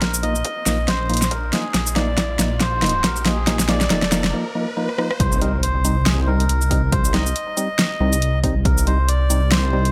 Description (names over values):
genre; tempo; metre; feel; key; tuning
deep dubstep; 139 BPM; 4/4; swing 57% on 16ths, half-time; C minor; A4 = 440 Hz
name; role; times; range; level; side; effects
melodica; melody; 0.0-9.9 s; Ab4 to Eb5; -28 LUFS; equal; dub echo
dark detuned saw bass; bass; 0.0-9.9 s; F1 to C2; -23 LUFS; equal; none
deep house drum kit; drums; 0.0-9.9 s; hi-hat, rim click, shaker, snare drum; -23 LUFS; equal; overdrive
electronic kick drum; drums; 0.0-8.8 s; none; -25 LUFS; equal; overdrive, high-pass filter on kick
riser and impact; sound effects; 0.4-6.9 s; none; -34 LUFS; equal; none
percussive organ stab; stabs; 0.2-9.9 s; F3 to Eb4; -28 LUFS; equal; chorus, dub echo
room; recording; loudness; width
moderate spring reverb, RT60 1.7 s, digital ambience; none; -19 LUFS; mono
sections
0.0-5.2 A section; 5.2-9.9 B section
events
build-up 0.0-5.2; drum fill 0.0-4.3, 4.9-5.2; filter sweep on synth stab 0.0-5.2; riser 0.4-5.2; break 4.3-5.2; drop 5.2-9.9; impact 5.2-6.9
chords
0.0 Bbsus4; 5.2 Cm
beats
| 0.02 0.45 0.88 1.31 | 1.75 2.18 2.61 3.04 | 3.47 3.90 4.34 4.77 | 5.20 5.63 6.06 6.49 | 6.93 7.36 7.79 8.22 | 8.65 9.08 9.52